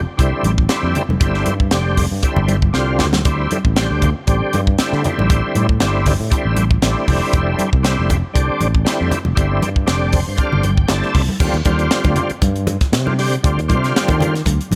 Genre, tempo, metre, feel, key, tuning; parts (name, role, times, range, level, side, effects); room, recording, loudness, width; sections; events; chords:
electric jazz fusion; 118 BPM; 4/4; swing 54% on 16ths; A4 = 440 Hz
sustaining fretless electric bass; bass; 0.0-14.8 s; F1 to Eb3; -21 LUFS; equal
bright tonewheel organ; accompaniment; 0.2-14.3 s; D3 to A5; -23 LUFS; equal; slow rotary speaker, overdrive, chorus vibrato
crisp fusion drum kit; drums; 0.2-14.8 s; crash cymbal, hi-hat, kick drum, snare drum; -21 LUFS; equal
congas; percussion; 0.5-14.8 s; -26 LUFS; equal
light reverb, studio ambience; -17 LUFS; mono
0.0-11.4 A section; 11.4-14.8 B section
drum fill 2.7-3.3; tonewheel organ fill 9.9-11.4
0.0 Fmaj7; 1.2 G7sus4; 3.3 Dsus2; 5.0 Am7; 7.1 Fmaj7(no3); 11.4 Ebmaj9